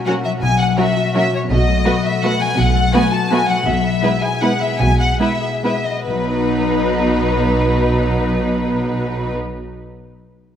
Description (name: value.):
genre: classical.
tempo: 130-179 BPM.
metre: 3/4.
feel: rubato.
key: B major.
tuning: A4 = 437 Hz.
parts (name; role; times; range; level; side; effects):
concert harp; arpeggios; 0.0-10.0 s; B2 to B4; -22 LUFS; left 6 dB; none.
rich studio violin section; melody; 0.1-9.3 s; B4 to A5; -20 LUFS; left 3 dB; none.
rich symphonic violin section; second line; 0.1-9.3 s; D#4 to B4; -23 LUFS; left 1 dB; none.
warm symphonic viola section; accompaniment; 0.1-9.3 s; F#3 to C#4; -22 LUFS; right 2 dB; none.
rich symphonic cello section; bass; 0.4-9.3 s; B2; -22 LUFS; right 2 dB; none.
rich symphonic double bass section; bass; 0.4-9.3 s; B1; -22 LUFS; right 2 dB; none.
room: moderate scoring stage reverb, RT60 1.7 s.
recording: none.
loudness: -14 LUFS.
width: side -9 dB against mid.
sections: 0.0-6.1 A section; 6.1-8.7 B section.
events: slowing down 3.1-6.1.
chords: 0.0 F#7/B; 1.5 B7; 3.7 E/B; 6.1 B.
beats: 0.06 | 0.42 0.78 1.15 | 1.50 1.85 2.22 | 2.57 2.93 3.30 | 3.66 4.03 4.42 | 4.80 5.20 5.63 | 6.07 6.50 6.96 | 7.39 7.82 8.27.